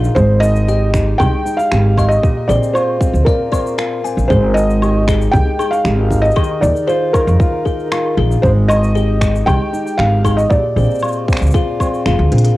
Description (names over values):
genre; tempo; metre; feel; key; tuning
folktronica; 116 BPM; 4/4; straight; Ab lydian; A4 = 439 Hz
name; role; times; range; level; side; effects
music box; second line; 0.0-12.3 s; Ab4 to Ab5; -24 LUFS; left 9 dB; cassette tape, analog delay
fingerpicked steel-string acoustic guitar; arpeggios; 0.0-12.6 s; Bb2 to G4; -21 LUFS; right 1 dB; cassette tape
upright bass; bass; 0.0-12.5 s; F1 to F2; -14 LUFS; equal; tube saturation
organic electronic drum kit; drums; 0.0-12.5 s; finger snaps, hi-hat, shaker, woodblock; -25 LUFS; equal; overdrive, cassette tape
felt-muted upright piano; melody; 0.1-12.0 s; Bb4 to G5; -18 LUFS; equal; cassette tape, analog delay
electronic kick drum; drums; 0.2-11.9 s; none; -17 LUFS; equal; overdrive, cassette tape
room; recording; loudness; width
small room ambience; home recording on cassette; -12 LUFS; side -17 dB against mid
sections
0.0-12.6 A section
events
drum fill 12.3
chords
0.2 Abmaj7(no3); 2.2 Bbadd9; 4.3 Abmaj7; 6.4 Ebsus2; 8.4 Abmaj7(no3); 10.5 Bbadd9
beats
| 0.16 0.68 1.20 1.71 | 2.23 2.75 3.27 3.78 | 4.30 4.82 5.33 5.85 | 6.37 6.89 7.40 7.92 | 8.44 8.96 9.47 9.99 | 10.51 11.02 11.54 12.06